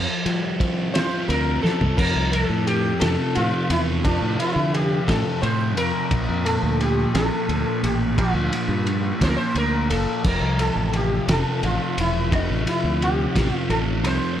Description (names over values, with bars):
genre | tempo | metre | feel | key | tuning
psychedelic rock | 58 BPM (dotted quarters) | 6/8 | straight | unclear | A4 = 440 Hz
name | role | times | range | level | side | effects
fuzz guitar | riff | 0.0-14.4 s | F2 to A4 | -24 LUFS | equal | distortion, phaser
fingered electric bass | bass | 0.0-14.2 s | E1 to F3 | -24 LUFS | equal | none
cloth-damped thuddy drum kit | drums | 0.3-14.2 s | crash cymbal, kick drum, ride cymbal, snare drum, toms | -26 LUFS | equal | none
sitar | melody | 0.9-14.4 s | D4 to C5 | -26 LUFS | left 1 dB | analog delay
room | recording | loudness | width
studio ambience | none | -19 LUFS | side -10 dB against mid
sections
0.0-2.0 A section; 2.0-14.4 B section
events
drum fill 1.6-2.0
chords
0.0 Fadd9; 2.0 F; 6.1 Bbmaj7; 10.2 F